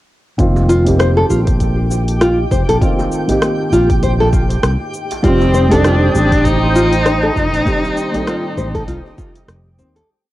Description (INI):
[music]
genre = organic downtempo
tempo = 99 BPM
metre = 4/4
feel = swing 57% on 16ths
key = F mixolydian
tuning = A4 = 440 Hz
[part]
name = felt-muted upright piano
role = accompaniment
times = 0.4-10.1 s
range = Eb3 to A4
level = -20 LUFS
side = right 1 dB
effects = sidechain pumping, cassette tape, analog delay, plate reverb
[part]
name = sustaining fretless electric bass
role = bass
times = 0.4-10.0 s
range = F1 to Eb2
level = -16 LUFS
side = equal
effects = analog chorus, sidechain pumping
[part]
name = deep house drum kit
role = drums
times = 0.4-10.1 s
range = hi-hat, rim click, shaker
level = -22 LUFS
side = equal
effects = cassette tape
[part]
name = electronic kick drum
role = drums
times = 0.4-9.3 s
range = none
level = -18 LUFS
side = equal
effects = cassette tape
[part]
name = twinkling granular texture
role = texture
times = 1.1-10.1 s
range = G4 to G5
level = -27 LUFS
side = right 1 dB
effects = built-in reverb, cassette tape, plate reverb
[part]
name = djembe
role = percussion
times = 0.6-10.1 s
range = none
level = -26 LUFS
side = right 1 dB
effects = none
[part]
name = nylon-string guitar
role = arpeggios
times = 0.7-10.1 s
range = C4 to C5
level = -18 LUFS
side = left 1 dB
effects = cassette tape, analog delay, plate reverb
[part]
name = dark cello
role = melody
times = 5.2-9.5 s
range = C4 to Eb4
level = -17 LUFS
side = equal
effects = analog delay, plate reverb
[part]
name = warm analog pad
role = sustained chords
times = 5.2-10.0 s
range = C5 to Eb6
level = -24 LUFS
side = right 1 dB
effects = chorus, sidechain pumping, cassette tape, plate reverb
[sound]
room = light reverb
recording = home recording on cassette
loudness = -12 LUFS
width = side -15 dB against mid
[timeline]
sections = 0.4-10.1 groove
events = fade-out 6.9-10.1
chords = 0.4 F7sus4; 5.2 Cm/F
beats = | 0.39 1.00 1.60 2.21 | 2.82 3.42 4.03 4.63 | 5.24 5.85 6.45 7.06 | 7.66 8.27 8.88 9.48